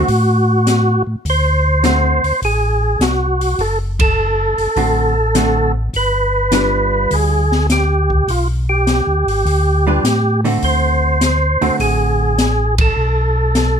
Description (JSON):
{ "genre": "soul jazz organ trio", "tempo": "102 BPM", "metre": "4/4", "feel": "swing 69% on 8ths", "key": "D mixolydian", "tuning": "A4 = 440 Hz", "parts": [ { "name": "percussive tonewheel organ", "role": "melody", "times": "0.0-13.8 s", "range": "F4 to C5", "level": "-16 LUFS", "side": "right 1 dB", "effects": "overdrive, chorus vibrato, stopped rotary speaker" }, { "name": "hollow-body jazz guitar", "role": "accompaniment", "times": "0.0-12.3 s", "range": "D3 to B4", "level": "-20 LUFS", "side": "right 3 dB", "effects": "none" }, { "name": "mellow tonewheel organ", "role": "bass", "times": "0.0-13.8 s", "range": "F#1 to A2", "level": "-17 LUFS", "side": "equal", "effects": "chorus vibrato, slow rotary speaker" }, { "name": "open jazz drum kit", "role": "drums", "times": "0.1-13.7 s", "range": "hi-hat, kick drum, ride cymbal, snare drum", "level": "-21 LUFS", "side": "left 2 dB", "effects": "none" } ], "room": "light reverb", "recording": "close, detailed microphones", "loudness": "-13 LUFS", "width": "side -7 dB against mid", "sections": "0.0-13.8 A section", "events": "band accent 3.9, 12.7", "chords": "0.0 D7; 5.9 G7; 10.6 D7; 13.0 B7(no3)", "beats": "0.08 0.67 | 1.25 1.84 2.42 3.01 | 3.59 4.18 4.77 5.35 | 5.94 6.52 7.11 7.70 | 8.28 8.87 9.45 10.04 | 10.62 11.21 11.79 12.38 | 12.96 13.55" }